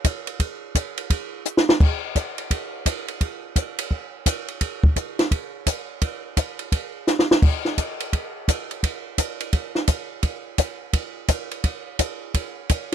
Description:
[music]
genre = jazz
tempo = 171 BPM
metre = 4/4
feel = swing 64% on 8ths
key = none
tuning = none
[part]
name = compact cocktail drum kit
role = drums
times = 0.0-12.9 s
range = crash cymbal, hi-hat, kick drum, ride cymbal, snare drum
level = -21 LUFS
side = equal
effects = none
[sound]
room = light reverb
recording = dry, close 1970s-style studio recording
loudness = -22 LUFS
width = side -9 dB against mid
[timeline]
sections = 0.0-12.9 A section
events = drum fill 1.5-1.8, 7.1-7.4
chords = none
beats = 0.05 | 0.40 0.75 1.10 1.45 | 1.81 2.16 2.51 2.86 | 3.21 3.56 3.91 4.26 | 4.62 4.97 5.32 5.67 | 6.02 6.37 6.72 7.07 | 7.42 7.77 8.13 8.48 | 8.83 9.18 9.53 9.88 | 10.24 10.59 10.94 11.29 | 11.64 12.00 12.35 12.70

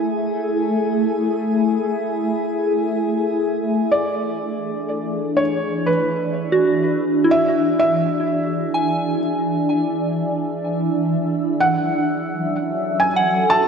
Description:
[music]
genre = ambient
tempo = 62 BPM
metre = 4/4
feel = straight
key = E mixolydian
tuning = A4 = 441 Hz
[part]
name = shimmering ambient pad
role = sustained chords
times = 0.0-13.7 s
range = E3 to E5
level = -20 LUFS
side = equal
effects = chorus, built-in reverb, phaser
[part]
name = drifting glass-harmonics texture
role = texture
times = 0.0-3.9 s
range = G#4 to G#5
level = -44 LUFS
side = left 2 dB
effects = chorus, built-in reverb
[part]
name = felt-muted upright piano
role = melody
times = 3.9-13.7 s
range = B4 to A5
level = -21 LUFS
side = right 1 dB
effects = tape echo
[part]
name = soft synth bell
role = arpeggios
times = 6.5-13.7 s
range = E4 to G#5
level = -21 LUFS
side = right 1 dB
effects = chorus, tape echo
[sound]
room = wet lush hall reverb, RT60 2.5 s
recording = none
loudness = -18 LUFS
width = side -6 dB against mid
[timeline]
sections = 0.0-3.9 A section; 3.9-13.7 B section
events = none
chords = 0.0 A5; 3.9 E7; 11.6 F#m7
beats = | 0.03 0.99 1.96 2.95 | 3.93 4.90 5.86 6.83 | 7.79 8.74 9.69 10.64 | 11.60 12.55 13.50

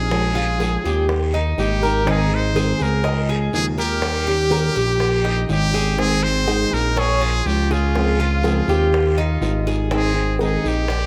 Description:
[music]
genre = latin, Cuban son and guajira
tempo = 122 BPM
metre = 4/4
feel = straight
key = Ab major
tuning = A4 = 441 Hz
[part]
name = brilliant trumpet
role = melody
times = 0.0-11.1 s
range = F4 to C5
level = -26 LUFS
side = equal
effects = none
[part]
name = nylon-string guitar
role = accompaniment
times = 0.0-10.9 s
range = Db3 to Ab4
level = -27 LUFS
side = equal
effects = none
[part]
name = Cuban tres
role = arpeggios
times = 0.0-11.1 s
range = C4 to Eb5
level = -26 LUFS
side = equal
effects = none
[part]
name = smooth synth bass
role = bass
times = 0.0-11.1 s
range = Ab1 to Eb2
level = -23 LUFS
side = equal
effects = none
[part]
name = bongos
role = percussion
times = 0.1-11.1 s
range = none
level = -32 LUFS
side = equal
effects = none
[part]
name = guiro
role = percussion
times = 0.1-11.1 s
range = none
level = -39 LUFS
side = equal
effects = none
[sound]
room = light reverb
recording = none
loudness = -19 LUFS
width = mono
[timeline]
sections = 0.0-6.0 A section; 6.0-11.1 A section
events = drum fill 5.7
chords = 0.1 Bbm7; 1.1 Eb; 2.1 Ab; 3.0 Dbadd9; 4.0 Eb7; 6.0 Ab; 7.0 Bbm7; 8.0 Dbmaj7; 8.9 Ebadd9; 9.9 Ab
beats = | 0.11 0.60 1.09 1.58 | 2.07 2.56 3.05 3.54 | 4.03 4.52 5.01 5.50 | 5.99 6.48 6.97 7.46 | 7.95 8.44 8.93 9.42 | 9.91 10.40 10.89

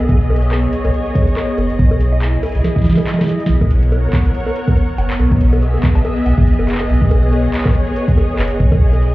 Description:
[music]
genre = IDM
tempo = 141 BPM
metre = 4/4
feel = swing 56% on 16ths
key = B major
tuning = A4 = 436 Hz
[part]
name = soft string machine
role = sustained chords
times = 0.0-9.1 s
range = B3 to F#5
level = -20 LUFS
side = left 1 dB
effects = ensemble chorus
[part]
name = booming analog drum machine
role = drums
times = 0.0-9.1 s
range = bongos, cowbell, handclaps, hi-hat, snare drum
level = -21 LUFS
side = right 1 dB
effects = digital delay
[part]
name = warm sub bass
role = bass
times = 0.1-9.1 s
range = F#1 to B1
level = -14 LUFS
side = equal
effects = tube saturation
[part]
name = electronic kick drum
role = drums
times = 0.1-8.8 s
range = none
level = -15 LUFS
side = equal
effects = none
[sound]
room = digital ambience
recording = heard muffled through a wall, club reverb, EQ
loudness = -12 LUFS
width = side -18 dB against mid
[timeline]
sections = 0.0-3.5 A section; 3.5-9.1 B section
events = drum fill 2.6-3.5; break 3.1-3.5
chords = 0.1 B69; 1.8 Emaj7/B; 3.5 F#add11; 5.2 F#13sus4; 6.9 B69; 8.6 Emaj7/B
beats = | 0.09 0.52 0.94 1.37 | 1.79 2.22 2.64 3.07 | 3.49 3.92 4.34 4.77 | 5.20 5.62 6.05 6.47 | 6.90 7.32 7.75 8.18 | 8.60 9.03

